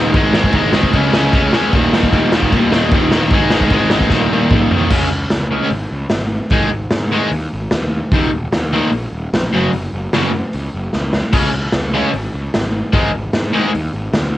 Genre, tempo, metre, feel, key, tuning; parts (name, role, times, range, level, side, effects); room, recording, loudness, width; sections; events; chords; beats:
punk rock; 150 BPM; 4/4; straight; A4 = 441 Hz
crunchy overdriven guitar; riff; 0.0-13.7 s; Eb2 to Db4; -16 LUFS; left 4 dB; cassette tape
distorted electric guitar; riff; 0.0-13.7 s; Eb2 to Db4; -19 LUFS; right 7 dB; distortion, cassette tape
fuzz picked electric bass; bass; 0.0-14.4 s; Eb1 to Ab2; -22 LUFS; equal; overdrive
raw garage drum kit; drums; 0.1-14.2 s; crash cymbal, hi-hat, kick drum, ride cymbal, snare drum, toms; -17 LUFS; equal
light reverb; home recording on cassette; -13 LUFS; side -14 dB against mid
0.0-4.9 A section; 4.9-14.4 B section
drum fill 4.1-4.9, 10.9-11.3; half time 4.9-14.4
0.1 Ab; 0.9 Db5; 1.7 Eb5; 3.3 Ab5; 4.1 Eb5; 4.9 Db5; 6.5 Ab5; 8.1 Eb5; 9.5 Gb5; 11.3 Db5; 12.9 Ab5
| 0.15 0.54 0.94 1.34 | 1.74 2.13 2.53 2.93 | 3.33 3.72 4.12 4.52 | 4.92 5.32 5.72 6.12 | 6.53 6.93 7.33 7.73 | 8.13 8.53 8.94 9.34 | 9.74 10.14 10.54 10.94 | 11.34 11.74 12.14 12.54 | 12.94 13.34 13.74 14.14